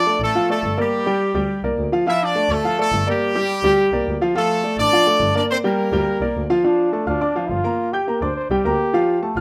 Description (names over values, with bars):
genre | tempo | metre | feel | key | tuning
latin | 210 BPM | 4/4 | straight | D minor | A4 = 440 Hz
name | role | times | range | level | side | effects
clear horn section | melody | 0.0-6.5 s | G3 to E5 | -22 LUFS | equal | none
clear grand piano | accompaniment | 0.1-9.4 s | F3 to G6 | -22 LUFS | equal | none
rich double bass | bass | 0.2-9.4 s | G1 to D2 | -29 LUFS | equal | none
bright trombone | melody | 6.6-9.3 s | D4 to C5 | -26 LUFS | equal | none
room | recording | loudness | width
moderate small room reverb, RT60 0.5 s | rough home demo mix | -19 LUFS | mono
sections
0.0-6.6 A section; 6.6-9.4 B section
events
trombone solo 6.6-9.4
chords
0.0 Dm; 0.9 Gm; 2.1 Dm; 3.2 Gm; 4.4 Dm; 5.5 Gm; 6.6 Dm; 7.8 Gm